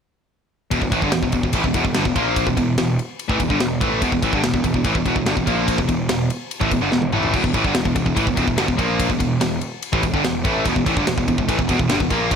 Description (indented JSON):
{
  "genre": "heavy metal",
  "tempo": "145 BPM",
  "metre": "4/4",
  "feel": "straight",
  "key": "E minor",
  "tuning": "A4 = 439 Hz",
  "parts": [
    { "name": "distorted electric guitar", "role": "riff", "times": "0.7-12.4 s", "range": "E2 to A#3", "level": "-24 LUFS", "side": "left 12 dB", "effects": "overdrive" },
    { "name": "heavy high-gain guitar", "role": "riff", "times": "0.7-12.4 s", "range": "E2 to A#3", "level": "-23 LUFS", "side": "right 11 dB", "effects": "distortion" },
    { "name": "overdriven electric guitar", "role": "riff", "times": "0.7-12.4 s", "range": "E2 to A#3", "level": "-25 LUFS", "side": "equal", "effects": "none" },
    { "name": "fuzz picked electric bass", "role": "bass", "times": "0.7-12.4 s", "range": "E1 to A#1", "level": "-25 LUFS", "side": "equal", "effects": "overdrive" },
    { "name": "tight metal drum kit", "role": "drums", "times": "0.7-12.4 s", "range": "crash cymbal, kick drum, ride cymbal, snare drum, toms", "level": "-23 LUFS", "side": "equal", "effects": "none" }
  ],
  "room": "little or no reverb",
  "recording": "none",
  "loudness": "-17 LUFS",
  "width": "side -7 dB against mid",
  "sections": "0.7-12.4 A section",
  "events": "drum fill 6.9-7.3",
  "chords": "0.7 Em",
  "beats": "| 0.71 1.13 1.54 1.96 | 2.37 2.79 3.20 3.61 | 4.03 4.44 4.86 5.27 | 5.69 6.10 6.52 6.93 | 7.35 7.76 8.18 8.59 | 9.00 9.42 9.83 10.25 | 10.66 11.08 11.49 11.90 | 12.32"
}